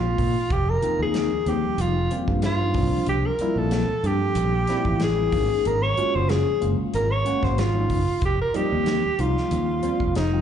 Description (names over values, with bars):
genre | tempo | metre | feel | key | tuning
electric jazz fusion | 93 BPM | 4/4 | swing 53% on 16ths | unclear | A4 = 440 Hz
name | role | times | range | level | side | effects
breathy alto saxophone | melody | 0.0-10.4 s | Eb4 to Db5 | -24 LUFS | right 1 dB | slapback echo
barky tine electric piano | accompaniment | 0.0-10.4 s | Eb3 to Gb4 | -28 LUFS | left 2 dB | fast stereo tremolo, phaser, slapback echo
fingered electric bass | bass | 0.0-10.4 s | F1 to Bb2 | -24 LUFS | equal | none
modern studio drum kit | drums | 0.2-10.3 s | hi-hat, kick drum, snare drum | -29 LUFS | left 1 dB | none
room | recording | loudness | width
small room ambience | live gig heard through the venue's PA, club reverb, nothing above 10.4 kHz | -20 LUFS | side -9 dB against mid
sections
0.0-10.4 A section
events
none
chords
0.0 Bb7sus2; 0.5 F9sus4; 2.8 C9sus4; 5.3 Ab9sus4; 8.2 F9sus4